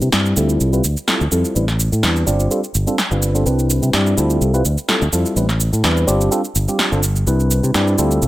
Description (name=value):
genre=filtered disco house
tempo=126 BPM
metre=4/4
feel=straight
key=C major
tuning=A4 = 440 Hz
part: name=bright tine electric piano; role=accompaniment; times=0.0-8.3 s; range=G3 to D5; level=-19 LUFS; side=equal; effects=phaser, low-pass filter
part: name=fingered electric bass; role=bass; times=0.0-8.3 s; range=G1 to C3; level=-17 LUFS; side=equal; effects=tube saturation, low-pass filter
part: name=electronic shaker and snare drum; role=drums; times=0.0-8.3 s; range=none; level=-20 LUFS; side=right 1 dB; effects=none
room=light reverb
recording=none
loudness=-14 LUFS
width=side -16 dB against mid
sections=0.0-8.3 A section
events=filter sweep 0.0-8.3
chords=0.4 Dm11; 1.6 Am11; 2.3 G9sus4; 3.5 Cmaj9; 4.2 Dm11; 5.4 Am11; 6.1 G9sus4; 7.3 Cmaj9